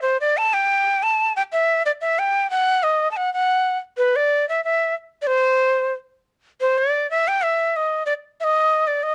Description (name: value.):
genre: andean folk.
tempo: 92 BPM.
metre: 2/4.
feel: straight.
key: unclear.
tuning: A4 = 440 Hz.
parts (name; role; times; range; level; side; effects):
breathy bright quena; solo; 0.0-9.1 s; B4 to A5; -20 LUFS; equal; cassette tape.
room: light reverb.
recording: home recording on cassette.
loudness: -20 LUFS.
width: mono.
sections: 0.0-6.6 A section; 6.6-9.1 A section.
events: none.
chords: none.